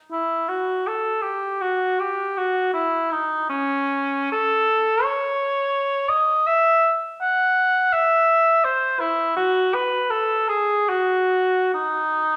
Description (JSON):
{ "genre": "classical, free, expressive piece for unaccompanied cor anglais", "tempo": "66-85 BPM", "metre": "3/4", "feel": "rubato", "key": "F# dorian", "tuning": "A4 = 440 Hz", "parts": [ { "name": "mellow cor anglais", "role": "solo", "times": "0.1-12.4 s", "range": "C#4 to F#5", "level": "-21 LUFS", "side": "equal", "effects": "none" } ], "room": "wet recital hall reverb, RT60 1.5 s", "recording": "recorded in a church or concert hall", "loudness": "-21 LUFS", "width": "mono", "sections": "0.0-12.4 A section", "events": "none", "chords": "none" }